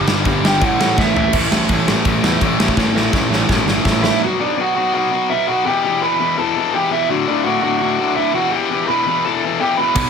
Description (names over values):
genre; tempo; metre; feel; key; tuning
punk rock; 167 BPM; 4/4; straight; unclear; A4 = 442 Hz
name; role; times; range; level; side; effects
lead guitar through a small cranked amp; melody; 0.0-1.3, 4.0-10.1 s; D4 to D6; -18 LUFS; right 3 dB; overdrive
sludgy distorted guitar; riff; 0.0-4.2, 10.0-10.1 s; G2 to B3; -20 LUFS; right 11 dB; overdrive
tight distorted guitar; riff; 0.0-10.1 s; D2 to B3; -19 LUFS; left 11 dB; distortion
fuzz picked electric bass; bass; 0.0-4.1, 10.0-10.1 s; G1 to A2; -22 LUFS; equal; overdrive
big rock drum kit; drums; 0.1-4.1, 10.0 s; crash cymbal, kick drum, snare drum, toms; -18 LUFS; equal; none
room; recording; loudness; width
light reverb; none; -14 LUFS; side -6 dB against mid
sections
0.0-1.3 A section; 1.3-4.2 B section; 4.2-10.1 C section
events
lead electric guitar solo 0.0-1.3; drum fill 1.0-1.3, 2.8-4.2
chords
0.0 G5; 0.6 A5; 4.2 Bm; 5.7 Em; 7.1 D; 8.3 Em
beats
0.25 0.61 0.97 | 1.33 1.69 2.05 2.41 | 2.77 3.13 3.49 3.85 | 4.21 4.57 4.93 5.29 | 5.65 6.01 6.37 6.73 | 7.09 7.45 7.80 8.16 | 8.52 8.88 9.24 9.60 | 9.96